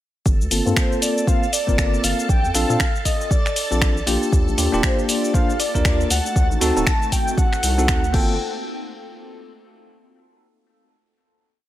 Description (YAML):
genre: deep house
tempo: 118 BPM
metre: 4/4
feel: swing 60% on 16ths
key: G minor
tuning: A4 = 440 Hz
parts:
  - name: round analog bass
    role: bass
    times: 0.3-8.4 s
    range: D1 to Bb2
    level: -23 LUFS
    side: equal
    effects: sidechain pumping
  - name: electronic kick drum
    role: drums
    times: 0.3-8.3 s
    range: none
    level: -19 LUFS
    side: equal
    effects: overdrive
  - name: punchy analog drum machine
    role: drums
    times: 0.3-8.3 s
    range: crash cymbal, finger snaps, hi-hat, shaker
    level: -24 LUFS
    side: left 1 dB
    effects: none
  - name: string machine, violins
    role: texture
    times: 0.3-8.4 s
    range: A4 to A5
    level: -33 LUFS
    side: equal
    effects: ensemble chorus, sidechain pumping
  - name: bell-like tine electric piano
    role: stabs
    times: 0.5-8.3 s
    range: Bb3 to C5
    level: -24 LUFS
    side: equal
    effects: fast stereo tremolo, vintage 12-bit sampler grit, sidechain pumping, low-pass filter, tape echo
  - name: breathy flute-like synth lead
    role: melody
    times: 0.8-8.4 s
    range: C5 to A5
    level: -26 LUFS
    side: left 1 dB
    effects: analog chorus, digital delay
  - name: hollow soft pad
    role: sustained chords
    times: 4.6-8.4 s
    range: A3 to G4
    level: -30 LUFS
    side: left 1 dB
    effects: ensemble chorus, vintage 12-bit sampler grit, sidechain pumping
room: light reverb, digital ambience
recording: none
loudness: -17 LUFS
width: side -14 dB against mid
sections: 0.3-8.4 groove; 8.4-10.4 final hit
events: filter sweep on tine electric piano 0.3-8.4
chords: 0.3 Gm11; 2.3 Bbmaj7; 4.3 Ebmaj7; 6.1 D7b9; 8.1 Gm11; 8.4 N.C.